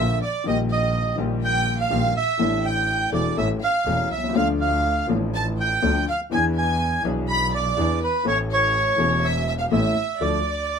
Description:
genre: tango.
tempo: 123 BPM.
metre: 4/4.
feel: rubato.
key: D harmonic minor.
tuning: A4 = 437 Hz.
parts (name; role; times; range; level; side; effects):
bandoneon; melody; 0.0-10.8 s; B4 to B5; -23 LUFS; right 3 dB; none.
warm studio violin section; second line; 0.0-10.8 s; B4 to B5; -29 LUFS; equal; none.
warm upright piano; accompaniment; 0.0-10.4 s; E1 to A4; -25 LUFS; left 5 dB; none.
warm double bass; bass; 0.0-10.4 s; E1 to E2; -26 LUFS; right 1 dB; none.
room: light reverb.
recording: minimal, uncompressed stereo recording.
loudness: -20 LUFS.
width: side -6 dB against mid.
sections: 0.0-10.8 A section.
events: band accent 10.2-10.8.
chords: 0.5 Eb/Bb; 2.4 Asus4; 3.4 A; 4.4 Dm; 6.3 E7; 8.3 A; 10.2 Dm.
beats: | 0.46 0.95 1.43 1.92 | 2.40 2.89 3.37 3.87 | 4.36 4.85 5.34 5.83 | 6.32 6.81 7.29 7.78 | 8.26 8.75 9.23 9.72 | 10.21 10.70.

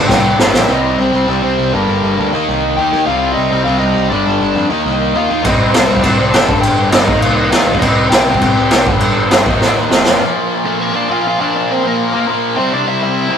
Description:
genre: punk rock.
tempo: 202 BPM.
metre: 4/4.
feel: straight.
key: unclear.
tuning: A4 = 439 Hz.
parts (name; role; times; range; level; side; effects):
biting overdriven guitar; melody; 0.0-13.4 s; A3 to A5; -18 LUFS; left 1 dB; none.
distorted electric guitar; riff; 0.0-13.4 s; F2 to Eb4; -16 LUFS; left 1 dB; overdrive.
fuzz guitar; riff; 0.0-10.2 s; F2 to Eb4; -20 LUFS; equal; distortion.
fuzz picked electric bass; bass; 0.0-10.2 s; F1 to F2; -21 LUFS; equal; overdrive.
raw garage drum kit; drums; 0.1-0.6, 5.4-10.1 s; crash cymbal, kick drum, snare drum; -12 LUFS; equal; none.
room: light reverb.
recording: rough rehearsal-room recording, warm saturation.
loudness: -11 LUFS.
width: side -8 dB against mid.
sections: 0.7-10.2 A section; 10.2-13.4 B section.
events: drum fill 0.1-0.7, 9.6-10.2.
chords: 0.0 Gm; 0.7 Cm; 1.7 Gm; 2.3 Eb; 3.1 Cm; 4.1 G5; 4.7 Eb5; 5.5 Cm; 6.5 G5; 7.1 Eb5; 7.8 Cm; 8.9 G5; 9.5 Eb; 9.9 F5; 10.2 Bb; 12.6 C.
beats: 0.10 0.40 | 0.69 0.99 1.29 1.58 | 1.88 2.18 2.48 2.78 | 3.07 3.37 3.67 3.96 | 4.26 4.56 4.86 5.15 | 5.45 5.75 6.04 6.34 | 6.64 6.94 7.23 7.53 | 7.83 8.12 8.42 8.72 | 9.01 9.31 9.61 9.90 | 10.20 10.49 10.79 11.09 | 11.38 11.68 11.97 12.27 | 12.56 12.86 13.15.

